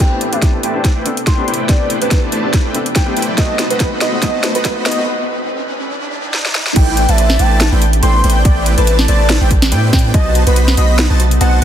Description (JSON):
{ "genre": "future bass", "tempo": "142 BPM", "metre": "4/4", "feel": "swing 55% on 16ths, half-time", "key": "A minor", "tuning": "A4 = 440 Hz", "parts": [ { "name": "warm velvety synth lead", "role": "melody", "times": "0.0-11.6 s", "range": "B4 to C6", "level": "-20 LUFS", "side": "equal", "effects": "chorus, sidechain pumping, tape echo" }, { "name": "felt-muted upright piano", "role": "accompaniment", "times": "0.0-5.1 s", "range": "A3 to A4", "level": "-24 LUFS", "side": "left 4 dB", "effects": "sidechain pumping, digital delay" }, { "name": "shimmering ambient pad", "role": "sustained chords", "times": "1.1-11.6 s", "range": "C3 to B4", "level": "-26 LUFS", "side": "equal", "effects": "chorus, built-in reverb, sidechain pumping" }, { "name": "dense compressed supersaw", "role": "riff", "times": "0.0-11.6 s", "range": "A3 to B5", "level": "-20 LUFS", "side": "equal", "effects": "sidechain pumping, low-pass filter" }, { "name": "electronic kick drum", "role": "drums", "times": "0.0-10.2 s", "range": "none", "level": "-13 LUFS", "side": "equal", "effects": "overdrive" }, { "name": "trap drum kit", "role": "drums", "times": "0.0-11.6 s", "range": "crash cymbal, hi-hat, snare drum", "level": "-19 LUFS", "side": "equal", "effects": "overdrive, high-pass filter on snare, high-pass filter on hats, high-pass filter on cymbals" }, { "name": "riser", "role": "sound effects", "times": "0.0-6.8 s", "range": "none", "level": "-26 LUFS", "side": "right 2 dB", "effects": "none" }, { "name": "airy dreamy lead", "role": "arpeggios", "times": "6.8-11.6 s", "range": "G5 to B5", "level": "-24 LUFS", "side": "equal", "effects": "chorus, sidechain pumping, digital delay" }, { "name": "long sustained 808-style bass", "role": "bass", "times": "6.8-11.6 s", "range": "A1 to A2", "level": "-12 LUFS", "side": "equal", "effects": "sidechain pumping" } ], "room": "light reverb", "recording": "dense, heavily limited modern master, high-pass filter", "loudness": "-11 LUFS", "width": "side -10 dB against mid", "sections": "0.0-6.8 A section; 6.8-11.6 B section", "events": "build-up 0.0-6.8; drum fill 0.0-5.1, 6.3-6.8; riser 0.0-6.8; filter sweep on supersaw synth 0.0-6.8; filter sweep 0.0-6.8; break 5.1-6.8; drop 6.8-11.6", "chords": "0.0 Am11; 3.4 B7b9; 5.1 Em7; 6.8 Am11; 10.1 B7b9" }